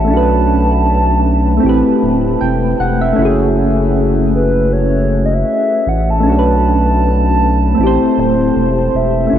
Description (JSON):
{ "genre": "lo-fi hip hop", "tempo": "78 BPM", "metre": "4/4", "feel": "swing 57% on 16ths", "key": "unclear", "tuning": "A4 = 440 Hz", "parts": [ { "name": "hollow clarinet-like synth lead", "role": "melody", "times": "0.0-9.4 s", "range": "B4 to A5", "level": "-18 LUFS", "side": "right 1 dB", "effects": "chorus, low-pass filter, ping-pong delay" }, { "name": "soft electric-piano-like synth keys", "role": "accompaniment", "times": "0.0-9.4 s", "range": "A3 to G5", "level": "-14 LUFS", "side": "equal", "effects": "chorus, phaser, cassette tape, low-pass filter" }, { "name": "saturated sub bass", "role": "bass", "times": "0.0-9.4 s", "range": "D1 to B1", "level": "-16 LUFS", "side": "equal", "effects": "none" } ], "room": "moderate huge ambient reverb, RT60 8.6 s", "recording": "dreamy mix soaked in reverb, cassette tape", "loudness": "-11 LUFS", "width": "side -10 dB against mid", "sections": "0.0-9.4 A section", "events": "none", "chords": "0.1 Bm9; 1.6 Am9; 3.2 F#m9; 6.2 Bm9; 7.8 Am7" }